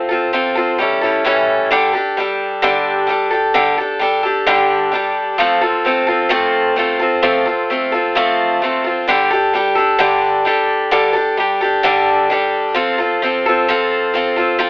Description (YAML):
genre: rock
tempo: 130 BPM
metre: 4/4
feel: straight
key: unclear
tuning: A4 = 440 Hz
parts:
  - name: picked acoustic archtop guitar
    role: solo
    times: 0.0-14.7 s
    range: A2 to A4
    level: -13 LUFS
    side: equal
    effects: none
room: light reverb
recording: telephone sound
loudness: -13 LUFS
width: side -26 dB against mid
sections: 0.0-1.7 A section; 1.7-14.7 B section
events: none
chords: 0.0 F; 0.8 A7; 1.7 Dsus4; 5.4 F; 9.1 Dsus4; 12.8 F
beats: 0.32 0.79 1.25 | 1.71 2.17 2.63 3.09 | 3.55 4.01 4.47 4.93 | 5.39 5.85 6.31 6.77 | 7.24 7.70 8.16 8.62 | 9.08 9.54 10.00 10.46 | 10.92 11.38 11.84 12.30 | 12.76 13.22 13.68 14.14 | 14.60